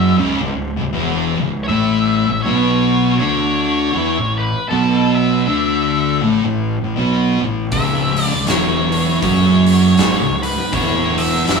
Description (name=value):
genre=stoner and doom metal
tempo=80 BPM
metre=4/4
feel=swing 60% on 8ths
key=C# phrygian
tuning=A4 = 438 Hz
part: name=octave-fuzz lead guitar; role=melody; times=0.0-11.6 s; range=A4 to E5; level=-21 LUFS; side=left 1 dB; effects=distortion
part: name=thick fuzz guitar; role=riff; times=0.0-11.6 s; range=C#2 to E4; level=-19 LUFS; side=left 7 dB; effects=distortion
part: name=thick fuzz guitar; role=riff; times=0.0-11.6 s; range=C#2 to E4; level=-18 LUFS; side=right 5 dB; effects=distortion
part: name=fuzz fingered electric bass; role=bass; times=0.0-11.6 s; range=C#1 to E2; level=-22 LUFS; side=equal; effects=overdrive
part: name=oversized low-tuned drum kit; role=drums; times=7.7-11.6 s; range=hi-hat, kick drum, snare drum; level=-20 LUFS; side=equal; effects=none
room=moderate stone room reverb, RT60 1.0 s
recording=band playing live in one room, small room reverb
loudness=-14 LUFS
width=side -5 dB against mid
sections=0.0-11.6 A section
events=none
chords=0.0 C#m; 1.7 A5; 7.7 C#m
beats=0.18 0.94 | 1.69 2.44 3.20 3.95 | 4.70 5.46 6.21 6.97 | 7.72 8.47 9.23 9.98 | 10.74 11.49